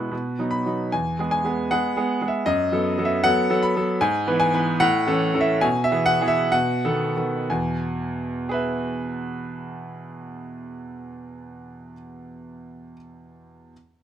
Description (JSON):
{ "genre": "classical-period piano sonatina", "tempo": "60-78 BPM", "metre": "2/4", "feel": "straight", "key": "E major", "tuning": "A4 = 440 Hz", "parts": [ { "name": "clear baby grand piano", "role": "solo", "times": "0.0-13.7 s", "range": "E2 to B5", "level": "-21 LUFS", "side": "equal", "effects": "none" } ], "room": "light reverb", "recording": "close, detailed microphones", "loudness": "-20 LUFS", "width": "side -10 dB against mid", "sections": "0.0-7.5 A section; 7.5-11.5 B section", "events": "slowing down 3.3-7.5", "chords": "0.1 B; 0.9 E; 2.5 B5/F#; 4.0 E/G#; 4.8 F#m7/A; 5.6 E/B; 6.5 B7; 7.5 E" }